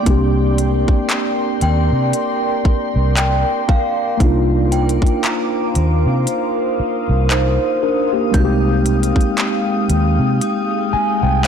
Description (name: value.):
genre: contemporary R&B.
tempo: 58 BPM.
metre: 4/4.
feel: swing 58% on 16ths.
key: C minor.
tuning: A4 = 440 Hz.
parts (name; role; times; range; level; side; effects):
mellow tine electric piano; accompaniment; 0.0-11.5 s; Ab3 to Ab5; -19 LUFS; equal; medium stereo tremolo.
glassy FM pad; sustained chords; 0.0-11.5 s; Ab3 to Eb6; -21 LUFS; left 1 dB; ensemble chorus, built-in reverb.
synth chime; texture; 0.0-11.5 s; F5 to G6; -30 LUFS; equal; ensemble chorus, ping-pong delay.
vintage muted fingered electric bass; bass; 0.1-11.5 s; C2 to C3; -16 LUFS; equal; none.
trap drum kit; drums; 0.1-11.5 s; handclaps, hi-hat, kick drum; -18 LUFS; equal; none.
room: light reverb, digital ambience.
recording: blown-out, overdriven recording, overdrive.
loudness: -14 LUFS.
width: side -7 dB against mid.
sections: 0.0-11.5 A section.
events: tine electric piano fill 2.7-4.2, 10.4-11.5.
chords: 0.1 Cm11; 8.3 Fm9/C.